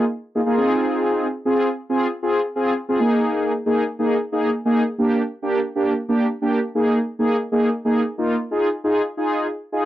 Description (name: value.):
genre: pop.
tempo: 136 BPM.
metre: 4/4.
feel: straight.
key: F dorian.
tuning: A4 = 441 Hz.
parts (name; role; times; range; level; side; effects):
mellow synth brass; solo; 0.0-9.8 s; Bb3 to Ab4; -18 LUFS; equal; chorus.
room: moderate small room ambience, RT60 0.5 s.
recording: dry, gritty hardware recording.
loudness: -18 LUFS.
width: side -14 dB against mid.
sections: 0.0-1.5 A section; 1.5-8.5 B section; 8.5-9.9 C section.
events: none.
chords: 0.0 Bb7sus4; 0.6 Fm7; 1.5 Fm; 3.0 Bb7sus4; 5.0 Gm; 6.7 Bb7sus4; 8.5 Fm7.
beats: 0.13 0.57 1.01 | 1.45 1.89 2.33 2.77 | 3.22 3.66 4.10 4.54 | 4.98 5.42 5.86 6.30 | 6.75 7.19 7.63 8.07 | 8.51 8.95 9.39 9.83.